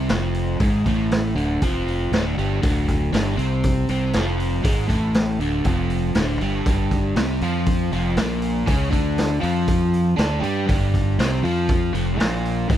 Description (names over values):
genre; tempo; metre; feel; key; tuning
blues rock power trio and southern rock; 119 BPM; 4/4; straight; unclear; A4 = 440 Hz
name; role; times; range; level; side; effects
crunchy overdriven guitar; riff; 0.0-12.8 s; D2 to G4; -22 LUFS; equal; none
growling fingered electric bass; bass; 0.0-12.8 s; D1 to G2; -23 LUFS; equal; overdrive
raw garage drum kit; drums; 0.1-12.8 s; hi-hat, kick drum, snare drum; -23 LUFS; equal; none
room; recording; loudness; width
little or no reverb; dry, close 1970s-style studio recording; -18 LUFS; side -11 dB against mid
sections
0.0-12.8 A section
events
none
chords
0.0 D5; 6.7 G5